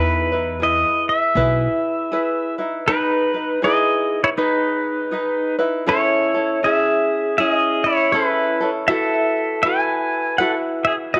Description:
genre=Hawaiian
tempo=80 BPM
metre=4/4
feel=swing 62% on 8ths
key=E major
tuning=A4 = 440 Hz
part: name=pedal steel guitar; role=melody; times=0.0-11.2 s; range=D#4 to G#5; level=-20 LUFS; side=equal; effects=none
part: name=tenor ukulele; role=accompaniment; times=0.0-11.2 s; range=C#4 to B4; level=-26 LUFS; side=equal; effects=none
part: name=upright bass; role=bass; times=0.0-1.7 s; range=B1 to E2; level=-25 LUFS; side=equal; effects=none
room=moderate plate reverb, RT60 2.7 s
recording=none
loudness=-19 LUFS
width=mono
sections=0.0-2.9 A section; 2.9-11.2 A section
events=none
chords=0.0 Emaj7; 5.9 Amaj7; 8.9 B7sus4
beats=0.59 1.35 2.10 | 2.86 3.61 4.36 5.12 | 5.87 6.62 7.38 8.13 | 8.88 9.63 10.39 11.14

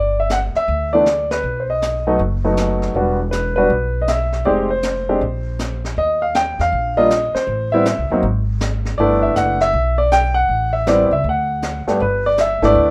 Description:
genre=jazz piano trio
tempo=159 BPM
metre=4/4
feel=swing 65% on 8ths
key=G major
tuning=A4 = 440 Hz
part: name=warm baby grand piano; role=melody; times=0.0-12.9 s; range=G2 to G5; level=-19 LUFS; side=equal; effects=none
part: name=upright bass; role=bass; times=0.0-12.9 s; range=E1 to E2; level=-24 LUFS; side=equal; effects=none
part: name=jazz brush drum kit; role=drums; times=0.3-12.9 s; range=brushed snare drum, hi-hat, snare drum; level=-31 LUFS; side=equal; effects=none
room=moderate studio reverb, RT60 0.5 s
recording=rough home demo mix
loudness=-18 LUFS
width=mono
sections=0.0-12.0 A section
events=none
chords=0.0 G5; 1.4 B7; 2.9 Em9; 4.5 Fm7; 5.2 Bbsus2; 6.0 Eb; 7.5 Am; 8.2 N.C.; 9.0 G69; 10.5 Am7; 11.2 D; 12.0 G69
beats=0.31 0.68 1.06 | 1.44 1.82 2.19 2.57 | 2.95 3.33 3.70 4.08 | 4.46 4.84 5.21 5.59 | 5.97 6.34 6.72 7.10 | 7.48 7.85 8.23 8.61 | 8.98 9.36 9.74 10.12 | 10.49 10.87 11.25 11.62 | 12.00 12.38 12.76

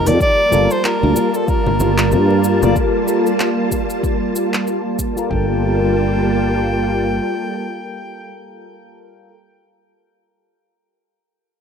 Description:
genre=sunset chillout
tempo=94 BPM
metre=4/4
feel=swing 57% on 16ths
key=G minor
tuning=A4 = 440 Hz
part: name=edgy soprano saxophone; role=melody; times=0.0-8.6 s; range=A4 to G5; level=-21 LUFS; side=equal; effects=digital delay
part: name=soft electric-piano-like synth keys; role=accompaniment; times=0.0-9.3 s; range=F3 to A5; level=-25 LUFS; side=left 2 dB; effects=chorus, phaser, auto-pan, low-pass filter, tape echo
part: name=soft string machine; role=sustained chords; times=0.0-8.6 s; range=F3 to A5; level=-18 LUFS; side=equal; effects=ensemble chorus
part: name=sustaining fretless electric bass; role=bass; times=0.0-7.2 s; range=G1 to G2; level=-18 LUFS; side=equal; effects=ensemble chorus
part: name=smooth R&B drum kit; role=drums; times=0.1-5.3 s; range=handclaps, hi-hat, shaker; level=-23 LUFS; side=equal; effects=small room ambience
part: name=congas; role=percussion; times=0.1-2.7 s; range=none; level=-23 LUFS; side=left 3 dB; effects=none
part: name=electronic kick drum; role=drums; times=0.2-5.5 s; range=none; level=-22 LUFS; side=equal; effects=small room ambience
room=moderate studio ambience, RT60 0.5 s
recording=rough home demo mix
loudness=-14 LUFS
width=side -7 dB against mid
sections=0.2-5.3 A section; 5.3-7.9 B section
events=none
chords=0.2 Gm9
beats=| 0.20 0.84 1.48 2.12 | 2.75 3.39 4.03 4.67 | 5.31 5.95 6.58 7.22

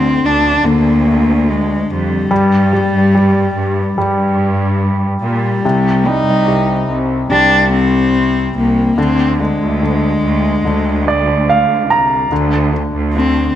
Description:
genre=pop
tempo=72 BPM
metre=4/4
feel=straight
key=unclear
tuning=A4 = 440 Hz
part: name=dark cello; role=melody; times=0.0-13.5 s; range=G3 to Eb4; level=-15 LUFS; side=left 2 dB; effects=none
part: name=clear concert grand piano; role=accompaniment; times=0.0-13.6 s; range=C3 to Bb5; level=-16 LUFS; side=equal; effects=none
part: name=warm studio cello section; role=bass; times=0.0-13.5 s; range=C2 to Bb2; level=-17 LUFS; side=right 1 dB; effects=none
room=light reverb, studio ambience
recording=nothing above 10.3 kHz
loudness=-11 LUFS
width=side -11 dB against mid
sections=0.0-13.6 A section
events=grand piano fill 10.6-12.3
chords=0.0 Bb/D; 2.3 N.C.; 5.6 Cm; 9.0 Bb7; 12.3 N.C.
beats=0.65 1.48 | 2.31 3.15 3.98 4.81 | 5.64 6.48 7.31 8.14 | 8.98 9.81 10.64 11.48 | 12.31 13.14

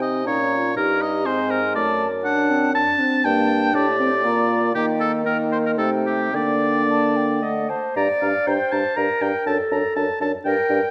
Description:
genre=quick classical-period movement for wind quintet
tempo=120 BPM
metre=3/4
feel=rubato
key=G minor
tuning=A4 = 440 Hz
part: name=mellow hollow silver concert flute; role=melody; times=0.0-10.7 s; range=F#5 to Bb5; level=-32 LUFS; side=equal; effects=none
part: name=clear oboe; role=second line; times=0.0-10.9 s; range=G4 to Bb5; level=-25 LUFS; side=equal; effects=none
part: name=clear clarinet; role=accompaniment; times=0.0-10.9 s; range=C4 to Eb5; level=-27 LUFS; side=equal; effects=none
part: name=mellow French horn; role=accompaniment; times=0.0-10.8 s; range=A3 to Eb4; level=-28 LUFS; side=equal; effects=none
part: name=mellow bassoon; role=bass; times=0.0-10.8 s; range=F#2 to Eb3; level=-28 LUFS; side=equal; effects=none
room=moderate scoring stage reverb, RT60 2.1 s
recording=none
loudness=-20 LUFS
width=mono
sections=0.0-8.0 A section; 8.0-10.9 B section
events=none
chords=0.3 Eb7/Bb; 1.3 Ab; 1.8 D7/F#; 3.2 Gm; 4.2 Bb; 4.8 Eb; 5.8 Am7b5/C; 6.3 Gm/D; 7.4 D; 8.0 Gm; 9.5 D/F#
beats=| 0.26 0.76 1.26 | 1.75 2.25 2.75 | 3.25 3.75 4.25 | 4.75 5.26 5.78 | 6.34 6.89 7.43 | 7.96 8.47 8.96 | 9.46 9.96 10.45

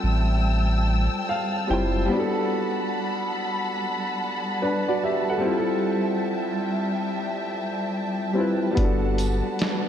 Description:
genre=lo-fi hip hop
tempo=72 BPM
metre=4/4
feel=swing 63% on 16ths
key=unclear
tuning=A4 = 440 Hz
part: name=clear upright piano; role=accompaniment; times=0.0-9.9 s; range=G3 to G5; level=-26 LUFS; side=equal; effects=low-pass filter
part: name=warm symphonic string section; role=sustained chords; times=0.0-9.9 s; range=G3 to E6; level=-27 LUFS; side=equal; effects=low-pass filter
part: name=warm sub bass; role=bass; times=0.0-2.1, 8.8-9.4 s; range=F#1 to A1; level=-22 LUFS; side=equal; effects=none
part: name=lo-fi sampler-style drum kit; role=drums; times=8.8-9.9 s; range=hi-hat, kick drum, snare drum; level=-24 LUFS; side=equal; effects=none
part: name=tambourine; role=percussion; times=9.2-9.4 s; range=none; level=-43 LUFS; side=right 6 dB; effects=none
room=wet lush hall reverb, RT60 3.1 s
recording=dreamy mix soaked in reverb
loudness=-22 LUFS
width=side -10 dB against mid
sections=0.0-9.9 A section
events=upright piano fill 0.9-2.1; break 2.1-8.8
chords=0.0 Fmaj9; 2.1 Gmaj9; 5.4 Fmaj9; 8.8 Gmaj9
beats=0.44 1.28 | 2.11 2.94 3.78 4.61 | 5.44 6.28 7.11 7.94 | 8.78 9.61

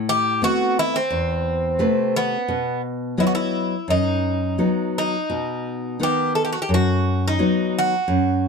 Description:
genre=fado-style ballad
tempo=86 BPM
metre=4/4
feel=rubato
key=unclear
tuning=A4 = 440 Hz
part: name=nylon-string guitar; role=accompaniment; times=0.0-8.5 s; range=E2 to D#5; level=-21 LUFS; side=left 1 dB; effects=none
part: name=Greek bouzouki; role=melody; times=0.1-8.5 s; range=B3 to A4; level=-22 LUFS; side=right 1 dB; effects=none
room=light reverb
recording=dark, warm production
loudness=-19 LUFS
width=side -5 dB against mid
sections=0.0-8.5 A section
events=none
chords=0.0 Amadd9; 2.5 B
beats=0.42 1.10 1.79 | 2.48 3.18 3.88 4.58 | 5.29 5.99 6.68 7.38 | 8.06

